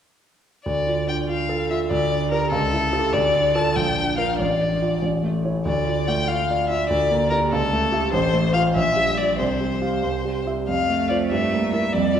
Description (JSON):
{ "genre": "quick classical-period movement for piano trio", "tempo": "96 BPM (dotted quarters)", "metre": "6/8", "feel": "straight", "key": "D minor, F major from 8.1 s", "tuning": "A4 = 440 Hz", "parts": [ { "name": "clear violin", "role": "melody", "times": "0.7-12.2 s", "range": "A4 to A5", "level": "-22 LUFS", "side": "left 3 dB", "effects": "none" }, { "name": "warm concert grand piano", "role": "accompaniment", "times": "0.7-12.2 s", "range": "A1 to F5", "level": "-22 LUFS", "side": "right 2 dB", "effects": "none" }, { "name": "rich cello", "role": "second line", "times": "10.7-12.2 s", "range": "G3 to A3", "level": "-26 LUFS", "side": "right 10 dB", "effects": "none" } ], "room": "wet scoring stage reverb, RT60 2.0 s", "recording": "recorded in a church or concert hall", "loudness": "-19 LUFS", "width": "side -8 dB against mid", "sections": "0.7-10.7 A section; 10.7-12.2 B section", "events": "none", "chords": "0.7 Dm; 1.9 Gm/D; 2.5 A7/C#; 3.1 Dm; 3.8 Bb; 4.4 Dm/A; 5.0 A; 5.7 Dm; 6.9 Gm/D; 7.5 A7/C#; 8.1 F/A; 8.8 Gm/Bb; 9.4 Csus4; 10.0 C; 10.7 F; 11.3 Edim/G" }